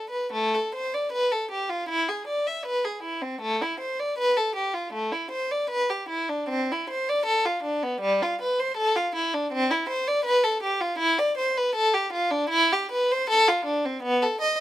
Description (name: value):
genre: classical, baroque-style suite movement for unaccompanied violin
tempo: 79 BPM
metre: 4/4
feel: rubato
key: A minor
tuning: A4 = 439 Hz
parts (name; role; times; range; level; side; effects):
- rich violin; solo; 0.0-14.6 s; G3 to E5; -23 LUFS; equal; none
room: little or no reverb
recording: close, detailed microphones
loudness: -23 LUFS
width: side -13 dB against mid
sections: 0.3-14.6 A section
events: none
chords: none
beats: | 0.32 1.13 1.90 2.65 | 3.42 4.18 4.94 5.70 | 6.49 7.26 8.01 8.75 | 9.50 10.25 10.99 11.74 | 12.51 13.28 14.03